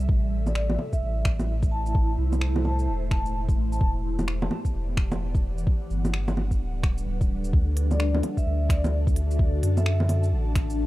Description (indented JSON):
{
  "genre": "future garage",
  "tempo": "129 BPM",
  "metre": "4/4",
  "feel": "swing 62% on 16ths",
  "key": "unclear",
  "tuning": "A4 = 439 Hz",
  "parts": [
    { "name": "ethereal airy pad", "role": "sustained chords", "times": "0.0-10.9 s", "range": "A2 to A5", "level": "-33 LUFS", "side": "left 1 dB", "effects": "ensemble chorus, built-in reverb, phaser, vintage 12-bit sampler grit, sidechain pumping" },
    { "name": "soft dub sub bass", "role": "bass", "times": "0.0-10.9 s", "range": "D1 to F#2", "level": "-25 LUFS", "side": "equal", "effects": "sidechain pumping" },
    { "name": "organic electronic drum kit", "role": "drums", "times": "0.0-10.8 s", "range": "bongos, finger snaps, hi-hat, shaker", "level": "-31 LUFS", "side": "right 1 dB", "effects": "overdrive" },
    { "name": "electronic kick drum", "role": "drums", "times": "0.1-10.7 s", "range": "none", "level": "-23 LUFS", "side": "equal", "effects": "overdrive" },
    { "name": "vibraphone with medium mallets", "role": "melody", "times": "0.5-3.9, 7.9-10.2 s", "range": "D5 to A5", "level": "-35 LUFS", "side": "equal", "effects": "analog delay" }
  ],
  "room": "little or no reverb",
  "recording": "dark, warm production",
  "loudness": "-22 LUFS",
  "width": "side -17 dB against mid",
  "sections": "0.0-7.5 A section; 7.5-10.9 B section",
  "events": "none",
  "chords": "0.1 Am; 3.8 Em7; 5.7 Gmaj7; 7.5 D"
}